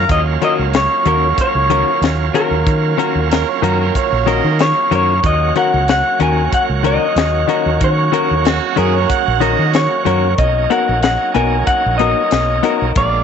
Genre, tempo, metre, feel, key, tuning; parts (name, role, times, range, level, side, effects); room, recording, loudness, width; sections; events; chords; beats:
straight-eighth soul blues; 93 BPM; 4/4; swing 55% on 16ths; Eb minor; A4 = 437 Hz
electric guitar through a small old amp; melody; 0.0-13.2 s; Bb4 to Ab5; -16 LUFS; left 2 dB
overdriven harmonica; second line; 0.0-4.6, 8.5-9.7 s; Gb4 to Gb5; -20 LUFS; right 13 dB
bright tonewheel organ; accompaniment; 0.0-13.2 s; Gb3 to Gb4; -21 LUFS; right 13 dB; slow rotary speaker, overdrive
fingered electric bass; bass; 0.0-13.2 s; Bb1 to Eb3; -18 LUFS; right 1 dB
tight funk drum kit; drums; 0.1-13.1 s; hi-hat, kick drum, snare drum; -19 LUFS; left 3 dB
direct-recorded clean electric guitar; stabs; 0.4-12.9 s; Eb3 to Bb4; -20 LUFS; left 10 dB; spring reverb, tape echo
light reverb, studio reverb; 1960s-style stereo with parts hard left and right, nothing above 7.9 kHz; -12 LUFS; side -7 dB against mid
0.1-13.2 A section
0.1 Ebm7; 10.4 Bmaj7
| 0.09 0.73 1.38 2.02 | 2.66 3.31 3.95 4.59 | 5.24 5.88 6.53 7.17 | 7.82 8.46 9.10 9.75 | 10.39 11.03 11.68 12.32 | 12.96